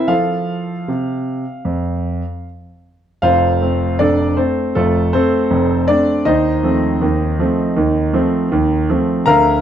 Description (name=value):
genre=classical-period piano sonatina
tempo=79 BPM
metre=4/4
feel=straight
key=F major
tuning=A4 = 440 Hz
part: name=clear grand piano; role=solo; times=0.0-9.6 s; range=F1 to Bb5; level=-14 LUFS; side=equal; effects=none
room=moderate large studio reverb, RT60 1.5 s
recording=dark, warm production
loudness=-14 LUFS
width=side -10 dB against mid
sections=0.0-3.2 A section; 3.2-9.6 B section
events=none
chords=0.1 F; 6.3 F7/Eb